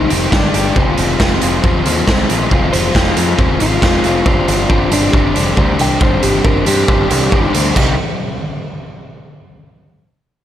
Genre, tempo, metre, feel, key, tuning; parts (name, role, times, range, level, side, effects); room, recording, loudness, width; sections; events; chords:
indie rock; 137 BPM; 4/4; straight; A4 = 440 Hz
clean electric guitar; melody; 0.0-0.1, 2.7-7.5 s; D4 to G5; -19 LUFS; left 1 dB; digital delay
crunchy overdriven guitar; riff; 0.0-7.9 s; C3 to D5; -19 LUFS; left 6 dB; slapback echo
crunchy overdriven guitar; riff; 0.0-7.9 s; G3 to G4; -20 LUFS; right 5 dB; analog chorus, slapback echo, digital delay
growling picked electric bass; bass; 0.0-8.0 s; F1 to G2; -18 LUFS; equal; overdrive
raw garage drum kit; drums; 0.1-7.9 s; crash cymbal, hi-hat, kick drum, snare drum; -15 LUFS; equal
light reverb; -11 LUFS; side -11 dB against mid
0.0-7.8 A section; 7.8-9.5 B section
clean electric guitar solo 0.0-7.8
0.3 G5; 0.8 Fm; 4.3 Gsus4; 7.8 Cm